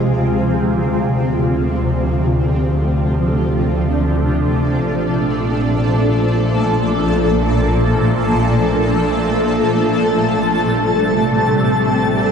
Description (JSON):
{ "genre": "ambient", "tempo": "free time", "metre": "none", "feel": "none", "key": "A phrygian", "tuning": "A4 = 437 Hz", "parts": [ { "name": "shimmering ambient pad", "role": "sustained chords", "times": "0.0-12.3 s", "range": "Bb2 to A4", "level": "-15 LUFS", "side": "equal", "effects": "chorus, built-in reverb, phaser" }, { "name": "rich studio double bass section", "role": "bass", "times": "0.0-12.3 s", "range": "A1 to D2", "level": "-21 LUFS", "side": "equal", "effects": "none" }, { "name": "twinkling granular texture", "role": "texture", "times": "9.9-12.3 s", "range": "A5", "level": "-22 LUFS", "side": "left 1 dB", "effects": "built-in reverb" } ], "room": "wet huge ambient reverb, RT60 7.4 s", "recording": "dark, warm production", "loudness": "-14 LUFS", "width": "side -6 dB against mid", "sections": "0.0-9.7 A section; 9.7-12.3 B section", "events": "filter sweep on ambient pad 0.0-9.7", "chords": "0.1 Dm7; 4.8 Bbmaj7; 9.7 Am7", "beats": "free time" }